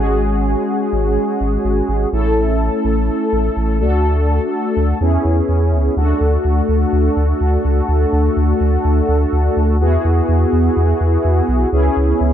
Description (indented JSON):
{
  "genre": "synth-pop",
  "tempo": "125 BPM",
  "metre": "4/4",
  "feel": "straight",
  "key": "unclear",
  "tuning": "A4 = 440 Hz",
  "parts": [
    { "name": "mellow synth brass", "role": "accompaniment", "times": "0.0-12.3 s", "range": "G#3 to A4", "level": "-17 LUFS", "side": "equal", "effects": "chorus" },
    { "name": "warm sub bass", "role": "bass", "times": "0.0-12.3 s", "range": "G#1 to E2", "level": "-16 LUFS", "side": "equal", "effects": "none" }
  ],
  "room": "light reverb, digital ambience",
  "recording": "none",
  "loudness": "-14 LUFS",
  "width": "side -10 dB against mid",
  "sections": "0.0-6.0 A section; 6.0-12.3 B section",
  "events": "none",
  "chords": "0.0 C#sus4/G#; 2.1 A; 3.8 D; 5.0 E6; 6.0 D; 9.8 Eadd9; 11.7 C#m7"
}